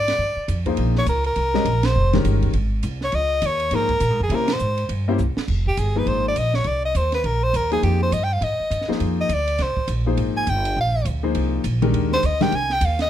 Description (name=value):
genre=modal jazz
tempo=204 BPM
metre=4/4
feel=swing 61% on 8ths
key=C phrygian, F dorian from 5.5 s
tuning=A4 = 440 Hz
part: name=breathy soprano saxophone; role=melody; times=0.0-13.1 s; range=G4 to Ab5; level=-22 LUFS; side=equal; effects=plate reverb
part: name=upright bass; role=bass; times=0.0-13.1 s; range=F1 to C3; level=-22 LUFS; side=right 1 dB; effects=none
part: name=compact cocktail drum kit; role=drums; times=0.1-13.0 s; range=crash cymbal, hi-hat, kick drum, ride cymbal, snare drum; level=-32 LUFS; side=right 4 dB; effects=none
part: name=warm baby grand piano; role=accompaniment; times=0.7-12.5 s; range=Eb3 to Eb5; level=-23 LUFS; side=left 5 dB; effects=none
room=little or no reverb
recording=close, detailed microphones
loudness=-18 LUFS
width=side -11 dB against mid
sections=0.0-5.5 A section; 5.5-13.1 B section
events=band accent 1.8, 4.5; drum fill 5.2; soprano saxophone solo 5.5-13.1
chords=0.0 Cm11; 0.8 Bbm11; 4.3 C7b9; 5.5 Fm11